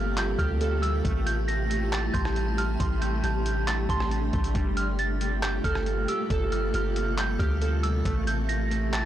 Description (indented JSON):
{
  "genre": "hip hop, atmospheric cloud-rap",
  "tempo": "137 BPM",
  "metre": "4/4",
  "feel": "half-time",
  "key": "G dorian",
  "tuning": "A4 = 439 Hz",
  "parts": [
    { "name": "soft synth bell", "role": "melody", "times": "0.0-9.1 s", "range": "C6 to Bb6", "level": "-32 LUFS", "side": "right 2 dB", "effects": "chorus, low-pass filter, tape echo" },
    { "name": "granular cloud pad", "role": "sustained chords", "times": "0.0-9.1 s", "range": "C3 to A4", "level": "-32 LUFS", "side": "equal", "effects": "built-in reverb, sidechain pumping" },
    { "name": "glassy digital keys", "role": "arpeggios", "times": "0.0-9.1 s", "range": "G3 to C6", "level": "-34 LUFS", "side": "right 4 dB", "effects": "chorus, low-pass filter, tape echo" },
    { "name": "long sustained 808-style bass", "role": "bass", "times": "0.0-9.1 s", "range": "G1 to D2", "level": "-28 LUFS", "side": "equal", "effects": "transformer saturation" },
    { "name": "downlifter", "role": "sound effects", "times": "0.1-1.0 s", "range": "none", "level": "barely audible", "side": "none", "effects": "none" },
    { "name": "trip hop sampler-style drum kit", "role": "drums", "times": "0.2-9.0 s", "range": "handclaps, hi-hat, kick drum, rim click", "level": "-31 LUFS", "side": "equal", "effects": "none" }
  ],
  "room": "little or no reverb",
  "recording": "blown-out, overdriven recording, overdrive",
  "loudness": "-24 LUFS",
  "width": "side -12 dB against mid",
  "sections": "0.0-9.1 A section",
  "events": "none",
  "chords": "0.0 Gm11; 1.0 Am7; 4.5 Gm11; 8.1 Am7"
}